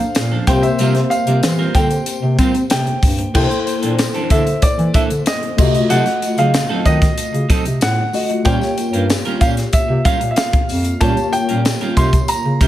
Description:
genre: polished 1980s jazz-funk pop.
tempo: 94 BPM.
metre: 4/4.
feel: straight.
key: unclear.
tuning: A4 = 440 Hz.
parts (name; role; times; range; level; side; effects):
warm baby grand piano; melody; 0.0-12.7 s; D5 to C6; -21 LUFS; equal; none.
tine electric piano; accompaniment; 0.0-12.7 s; A3 to Eb5; -21 LUFS; left 3 dB; overdrive, ensemble chorus.
clean electric guitar; riff; 0.0-12.7 s; E3 to Bb4; -24 LUFS; right 5 dB; wide subtle chorus.
breathy bass clarinet; bass; 0.0-12.7 s; F2 to C4; -18 LUFS; equal; none.
crisp fusion drum kit; drums; 0.1-12.7 s; crash cymbal, hi-hat, kick drum, snare drum; -18 LUFS; equal; gated reverb.
tambourine; percussion; 0.2-12.7 s; none; -34 LUFS; left 4 dB; none.
room: small room reverb.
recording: none.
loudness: -14 LUFS.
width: side -13 dB against mid.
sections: 0.0-3.4 A section; 3.4-12.7 B section.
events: none.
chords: 0.5 C7sus4; 3.4 C13; 5.6 F7b9/C; 8.5 Bbm6.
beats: 0.16 | 0.80 1.43 2.07 2.71 | 3.35 3.99 4.63 5.27 | 5.91 6.54 7.18 7.82 | 8.46 9.10 9.73 10.37 | 11.01 11.65 12.29.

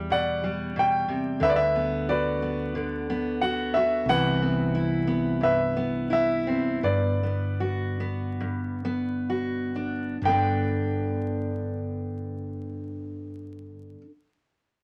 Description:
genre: acoustic folk-pop ballad.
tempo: 61-91 BPM.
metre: 4/4.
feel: straight.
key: G major.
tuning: A4 = 442 Hz.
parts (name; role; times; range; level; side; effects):
clear baby grand piano; melody; 0.0-14.0 s; B4 to B5; -28 LUFS; equal; none.
fingerpicked steel-string acoustic guitar; accompaniment; 0.0-14.1 s; E2 to G4; -31 LUFS; equal; none.
mellow fretless electric bass; bass; 0.0-13.9 s; G1 to E2; -34 LUFS; equal; none.
room: moderate studio reverb, RT60 0.7 s.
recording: vinyl crackle.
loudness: -26 LUFS.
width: mono.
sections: 0.0-10.2 A section; 10.2-14.1 B section.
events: slowing down 4.1-10.2.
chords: 0.0 Em7; 1.4 Gmaj7/D; 4.1 Cmaj7; 6.8 Gmaj7; 10.2 G.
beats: 0.11 0.77 | 1.43 2.09 2.75 3.41 | 4.07 4.73 5.40 6.10 | 6.82 7.58 8.39 9.27 | 10.22 11.20 12.16 13.14.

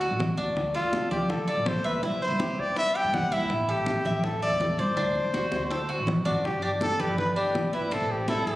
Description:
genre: latin, Cuban son and guajira.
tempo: 163 BPM.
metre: 4/4.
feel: straight.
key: G major.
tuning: A4 = 440 Hz.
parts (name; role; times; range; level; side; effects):
warm trumpet; melody; 0.0-8.6 s; F4 to G5; -28 LUFS; left 1 dB; none.
Cuban tres; arpeggios; 0.0-8.6 s; C4 to E5; -30 LUFS; equal; none.
upright bass; bass; 0.0-8.6 s; G1 to D3; -33 LUFS; equal; none.
congas; percussion; 0.0-8.5 s; none; -33 LUFS; equal; none.
bongos; percussion; 0.2-8.6 s; none; -36 LUFS; left 2 dB; none.
room: wet concert hall reverb, RT60 2.4 s.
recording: recorded on a phone in the room, club reverb.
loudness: -24 LUFS.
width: side -16 dB against mid.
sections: 0.0-6.4 A section; 6.4-8.6 B section.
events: drum fill 5.3-6.4.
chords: 0.0 D; 0.6 Dmadd9; 2.0 Cmaj7; 3.5 Am7; 5.0 D7; 6.4 G; 7.9 Am.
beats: 0.20 | 0.56 0.93 1.30 1.66 | 2.03 2.40 2.77 3.13 | 3.50 3.87 4.24 4.60 | 4.97 5.34 5.71 6.07 | 6.44 6.81 7.18 7.55 | 7.91 8.28.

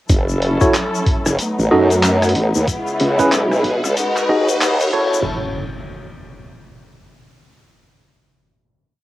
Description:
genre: glitch hop.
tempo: 93 BPM.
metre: 4/4.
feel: swing 60% on 16ths.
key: F# dorian.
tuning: A4 = 440 Hz.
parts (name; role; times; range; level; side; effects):
muted studio string section; sustained chords; 0.1-5.2 s; C#3 to B4; -21 LUFS; left 1 dB; vintage 12-bit sampler grit, sidechain pumping.
formant-sweep wobble bass; bass; 0.1-5.2 s; F#1 to F#2; -17 LUFS; equal; chorus, overdrive.
boom bap sampler-style drum kit; drums; 0.1-5.1 s; crash cymbal, handclaps, hi-hat, rim click; -23 LUFS; equal; cassette tape.
electronic kick drum; drums; 0.1-5.1 s; none; -17 LUFS; equal; cassette tape.
tube shaker; percussion; 0.1-5.2 s; none; -29 LUFS; left 8 dB; none.
riser and impact; sound effects; 2.5-7.5 s; none; -29 LUFS; equal; none.
tine electric piano; stabs; 0.6-5.2 s; C#4 to D#5; -18 LUFS; right 1 dB; medium stereo tremolo, sidechain pumping, low-pass filter, tape echo.
room: moderate small room reverb, RT60 0.5 s.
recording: home recording on cassette, high-pass filter.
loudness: -14 LUFS.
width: side -16 dB against mid.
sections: 0.1-5.3 build; 5.3-7.8 final hit.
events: build-up 0.1-5.3; filter sweep 0.1-5.3; riser 2.5-5.3.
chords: 0.1 F#m7; 1.4 B7; 2.7 C#m7; 4.0 G#m7; 4.9 F#m7; 5.3 N.C..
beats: | 0.10 0.74 1.39 2.04 | 2.68 3.33 3.97 4.62 | 5.26 5.91 6.55 7.20.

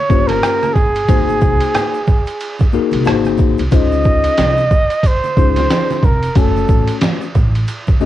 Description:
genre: hip hop, jazz-hop.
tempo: 91 BPM.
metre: 4/4.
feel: swing 60% on 16ths.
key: Db major.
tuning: A4 = 440 Hz.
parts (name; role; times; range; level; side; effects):
breathy flugelhorn; melody; 0.0-7.0 s; Ab4 to Eb5; -17 LUFS; right 2 dB; cassette tape.
tine electric piano; accompaniment; 0.1-8.1 s; A3 to Ab5; -18 LUFS; left 9 dB; medium stereo tremolo, cassette tape.
upright bass; bass; 0.1-7.6 s; F1 to Db2; -19 LUFS; right 1 dB; none.
trip hop sampler-style drum kit; drums; 0.1-8.0 s; hi-hat, kick drum, ride cymbal, rim click, snare drum; -15 LUFS; right 1 dB; overdrive, vintage 12-bit sampler grit, cassette tape.
tube shaker and congas; percussion; 0.1-8.1 s; none; -29 LUFS; right 8 dB; none.
room: light reverb.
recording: home recording on cassette.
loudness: -12 LUFS.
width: side -13 dB against mid.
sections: 0.0-8.1 A section.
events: none.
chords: 0.0 Bbm13; 1.1 Ab9; 3.7 Dbmaj9; 6.4 Gbmadd9.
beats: 0.42 | 1.08 1.74 2.40 3.06 | 3.72 4.38 5.04 5.70 | 6.36 7.02 7.67.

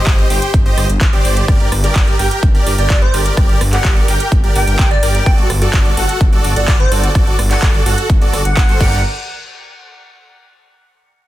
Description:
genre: EDM, festival progressive house.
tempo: 127 BPM.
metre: 4/4.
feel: straight.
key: G harmonic minor.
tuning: A4 = 440 Hz.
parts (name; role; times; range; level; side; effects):
supersaw chords; riff; 0.0-9.0 s; F#4 to G5; -19 LUFS; right 1 dB; lush chorus, sidechain pumping, dub echo.
detuned saw bass; bass; 0.1-9.0 s; G1; -17 LUFS; equal; sidechain pumping.
big-room dance drum kit; drums; 0.1-8.9 s; crash cymbal, handclaps, hi-hat, rim click; -22 LUFS; right 1 dB; studio reverb.
electronic kick drum; drums; 0.1-8.9 s; none; -12 LUFS; equal; studio reverb.
airy dreamy lead; melody; 2.8-9.0 s; C5 to G5; -22 LUFS; right 1 dB; chorus, dub echo.
room: little or no reverb.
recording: dense, heavily limited modern master.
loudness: -11 LUFS.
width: side -15 dB against mid.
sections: 0.0-9.0 A section; 9.0-10.9 B section.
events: drop 0.0-9.0.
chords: 0.0 Cm/G; 1.5 Gm; 5.3 D/G; 8.8 Gm; 9.0 N.C..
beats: 0.07 0.54 1.01 | 1.48 1.96 2.43 2.90 | 3.37 3.85 4.32 4.79 | 5.26 5.74 6.21 6.68 | 7.15 7.62 8.10 8.57.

